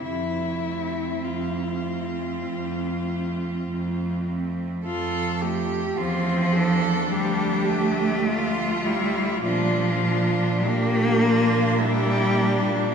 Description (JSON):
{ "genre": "classical, lyrical piece for cello ensemble", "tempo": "47-54 BPM", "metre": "4/4", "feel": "rubato", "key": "F major", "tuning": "A4 = 439 Hz", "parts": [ { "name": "clear cello", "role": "melody", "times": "0.0-12.9 s", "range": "A3 to F4", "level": "-29 LUFS", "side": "left 3 dB", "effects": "none" }, { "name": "rich cello", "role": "second line", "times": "0.0-12.9 s", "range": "C4 to A4", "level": "-29 LUFS", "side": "right 4 dB", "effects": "none" }, { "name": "clear cello", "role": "accompaniment", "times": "0.0-12.9 s", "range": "F3 to Bb3", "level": "-24 LUFS", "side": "equal", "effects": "none" }, { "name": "clear cello", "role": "bass", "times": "0.0-12.9 s", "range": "D2 to Bb2", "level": "-27 LUFS", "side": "right 2 dB", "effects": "none" } ], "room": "wet cathedral reverb, RT60 6.4 s", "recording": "recorded in a church or concert hall", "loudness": "-21 LUFS", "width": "side -6 dB against mid", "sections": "0.0-4.9 A section; 4.9-12.9 A section", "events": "none", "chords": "0.0 F; 7.1 Dm; 9.4 Bb" }